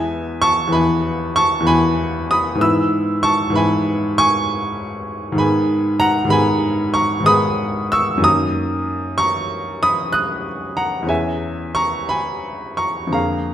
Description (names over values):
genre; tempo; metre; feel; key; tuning
classical, romantic nocturne for solo piano; 64 BPM (dotted quarters); 9/8; uneven beats, rubato; G# minor from 5.4 s; A4 = 440 Hz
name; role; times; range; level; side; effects
clear grand piano; solo; 0.0-13.5 s; E2 to F#6; -16 LUFS; equal; none
room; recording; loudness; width
wet recital hall reverb, RT60 1.6 s; none; -16 LUFS; side -10 dB against mid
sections
0.0-13.5 A section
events
none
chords
0.0 E; 2.6 E/G#; 5.4 G#m; 8.3 D#m/F#; 11.1 C#m/E